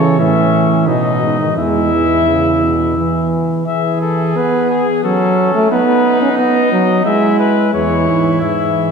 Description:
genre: classical, imitative canzona for brass ensemble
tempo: 88 BPM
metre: 3/4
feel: straight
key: E major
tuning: A4 = 439 Hz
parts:
  - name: clear cornet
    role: melody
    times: 0.0-8.9 s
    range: G#4 to E5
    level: -18 LUFS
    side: left 7 dB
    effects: none
  - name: mellow trumpet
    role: second line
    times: 0.0-8.9 s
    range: C#4 to A4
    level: -20 LUFS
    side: right 2 dB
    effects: none
  - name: clear euphonium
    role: accompaniment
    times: 0.0-8.9 s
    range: B2 to C#4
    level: -14 LUFS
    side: right 2 dB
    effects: none
  - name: warm bass trombone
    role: bass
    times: 0.0-3.3, 7.7-8.9 s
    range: E2 to C#3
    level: -18 LUFS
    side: right 2 dB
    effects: none
room: wet church reverb, RT60 3.5 s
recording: heard from further back in the room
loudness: -12 LUFS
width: side -6 dB against mid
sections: 0.0-3.7 A section; 3.7-7.7 B section; 7.7-8.9 A section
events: none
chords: 0.0 A; 0.9 B; 1.6 E; 5.0 F#m; 5.7 B; 7.1 E/G#; 7.7 C#m/E

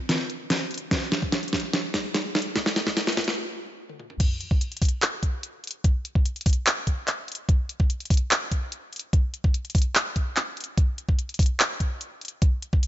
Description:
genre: future bass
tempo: 146 BPM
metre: 4/4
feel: half-time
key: none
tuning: none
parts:
  - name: pop drum kit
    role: drums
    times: 0.1-12.9 s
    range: crash cymbal, handclaps, hi-hat, snare drum, toms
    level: -25 LUFS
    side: equal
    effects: overdrive
  - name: electronic kick drum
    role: drums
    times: 0.9-12.8 s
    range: none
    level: -22 LUFS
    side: equal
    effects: overdrive
room: light reverb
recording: high-pass filter, nothing above 7.7 kHz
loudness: -23 LUFS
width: side -13 dB against mid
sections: 0.0-4.2 A section; 4.2-12.9 B section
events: build-up 0.0-4.2; drum fill 0.0-3.4, 3.9-4.2; stop 3.4-4.2; drop 4.2-12.9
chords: none

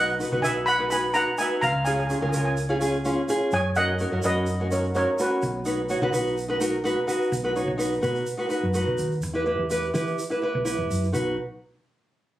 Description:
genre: calypso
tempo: 126 BPM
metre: 4/4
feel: straight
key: B major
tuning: A4 = 438 Hz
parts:
  - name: steel pan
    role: melody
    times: 0.0-6.8 s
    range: F#4 to B5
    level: -25 LUFS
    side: equal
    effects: plate reverb, tape echo
  - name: nylon-string guitar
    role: accompaniment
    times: 0.0-11.4 s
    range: C#4 to C#5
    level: -25 LUFS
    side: equal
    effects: none
  - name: hollow-body short-scale fingered electric bass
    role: bass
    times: 0.0-11.4 s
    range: B1 to E3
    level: -29 LUFS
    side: equal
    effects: none
  - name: egg shaker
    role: percussion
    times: 0.1-11.4 s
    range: none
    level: -38 LUFS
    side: right 2 dB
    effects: none
room: moderate small room reverb, RT60 0.5 s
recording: recorded on a phone in the room, studio reverb, compression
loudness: -22 LUFS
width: side -14 dB against mid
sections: 0.0-7.3 A section; 7.3-11.1 B section; 11.1-12.4 C section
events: none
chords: 0.0 B; 1.6 C#; 3.5 F#; 5.4 B; 9.2 Em; 11.1 B

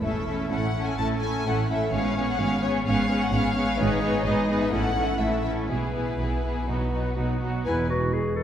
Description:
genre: quick classical-period movement for symphony orchestra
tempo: 126 BPM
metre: 4/4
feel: uneven beats, rubato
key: E major from 3.8 s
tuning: A4 = 440 Hz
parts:
  - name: warm chamber violin section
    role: melody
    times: 0.0-7.9 s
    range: B4 to A5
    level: -31 LUFS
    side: left 3 dB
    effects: none
  - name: rich studio violin section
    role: second line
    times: 0.0-7.9 s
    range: D#4 to C#5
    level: -30 LUFS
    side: left 1 dB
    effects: none
  - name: rich chamber viola section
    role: accompaniment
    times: 0.0-7.9 s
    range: E3 to D#4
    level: -29 LUFS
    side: right 1 dB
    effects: none
  - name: warm chamber cello section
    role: bass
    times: 0.0-8.1 s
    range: E2 to B2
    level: -30 LUFS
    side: equal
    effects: none
  - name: warm studio double bass section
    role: bass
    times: 0.0-8.0 s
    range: E1 to B1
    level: -29 LUFS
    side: right 2 dB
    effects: none
  - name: bright clarinet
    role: second line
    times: 7.7-8.4 s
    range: E4 to A4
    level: -27 LUFS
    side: equal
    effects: none
  - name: mellow French horn section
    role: sustained chords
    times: 7.7-8.4 s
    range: G#3 to B4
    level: -31 LUFS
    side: left 2 dB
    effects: none
room: wet concert hall reverb, RT60 2.2 s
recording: heard from further back in the room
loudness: -23 LUFS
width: side -10 dB against mid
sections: 0.0-7.7 A section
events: none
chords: 0.0 A; 1.9 C#5/G#; 3.8 G#m; 4.7 A; 5.7 E/B; 6.7 B; 7.7 E

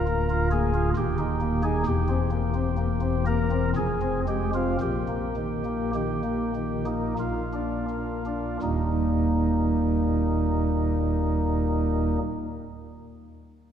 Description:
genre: classical, chorale-style piece for pipe organ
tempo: 41-68 BPM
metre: 3/4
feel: rubato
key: Eb major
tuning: A4 = 440 Hz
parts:
  - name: pipe organ, flutes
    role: solo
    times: 0.0-12.2 s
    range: D1 to Bb4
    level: -23 LUFS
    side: equal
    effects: none
room: wet church reverb, RT60 2.7 s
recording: minimal, uncompressed stereo recording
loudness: -23 LUFS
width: side -9 dB against mid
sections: 0.0-8.6 A section; 8.6-13.0 B section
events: slowing down 0.5-8.6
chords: 0.0 Bb/D; 1.0 Eb; 1.9 C7/E; 3.8 Fm; 4.8 Eb/Bb; 7.2 Bb; 8.6 Eb

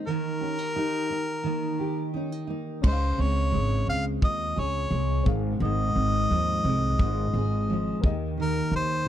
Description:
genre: acoustic pop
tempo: 87 BPM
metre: 4/4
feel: straight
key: unclear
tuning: A4 = 441 Hz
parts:
  - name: fingerpicked steel-string acoustic guitar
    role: accompaniment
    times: 0.0-9.1 s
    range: Ab2 to Ab4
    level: -30 LUFS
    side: equal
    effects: double-tracked left and right
  - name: nylon-string guitar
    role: arpeggios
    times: 0.0-9.1 s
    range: Eb3 to Ab4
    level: -35 LUFS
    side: right 4 dB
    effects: none
  - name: warm harmonica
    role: melody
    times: 0.1-9.1 s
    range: Bb4 to F5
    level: -29 LUFS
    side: left 1 dB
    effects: none
  - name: dark upright piano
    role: accompaniment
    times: 2.8-9.1 s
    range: Bb3 to C6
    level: -40 LUFS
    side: left 8 dB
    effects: none
  - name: upright bass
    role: bass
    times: 2.8-9.0 s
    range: Ab1 to Eb2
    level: -27 LUFS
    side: equal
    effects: none
  - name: loose indie drum kit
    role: drums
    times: 2.8-8.2 s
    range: crash cymbal, kick drum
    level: -24 LUFS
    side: equal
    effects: none
room: little or no reverb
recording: dry, close 1970s-style studio recording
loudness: -24 LUFS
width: side -11 dB against mid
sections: 0.0-2.8 A section; 2.8-9.1 B section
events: none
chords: 0.1 Eb; 2.8 Dbmaj7; 5.3 Ab6; 8.0 Eb

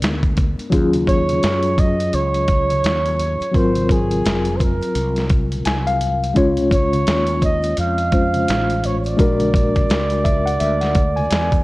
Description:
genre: hip hop, jazz-hop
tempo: 85 BPM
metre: 4/4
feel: swing 60% on 16ths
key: Eb dorian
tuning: A4 = 440 Hz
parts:
  - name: breathy flugelhorn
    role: melody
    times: 0.0-11.6 s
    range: Ab4 to F5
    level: -21 LUFS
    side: right 2 dB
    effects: none
  - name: mellow tine electric piano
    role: accompaniment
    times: 0.0-11.6 s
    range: Gb3 to Ab5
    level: -20 LUFS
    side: left 2 dB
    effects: overdrive, medium tremolo
  - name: mellow fretless electric bass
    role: bass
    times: 0.0-11.6 s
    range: F1 to Gb2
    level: -22 LUFS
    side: equal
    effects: none
  - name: dusty soul sampler-style drum kit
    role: drums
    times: 0.0-11.6 s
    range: hi-hat, kick drum, snare drum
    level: -20 LUFS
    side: equal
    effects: none
  - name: maracas and congas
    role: percussion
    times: 0.0-11.6 s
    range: none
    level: -33 LUFS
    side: right 1 dB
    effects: none
room: light reverb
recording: worn, warbling old tape, cassette tape, warbly pitch drift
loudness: -15 LUFS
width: side -20 dB against mid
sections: 0.7-11.6 A section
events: tine electric piano fill 5.3-6.4, 9.9-11.6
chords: 0.0 Bb7b9; 0.7 Ebm11; 3.5 Ab13; 6.4 Dbmaj7; 9.2 Bb7alt

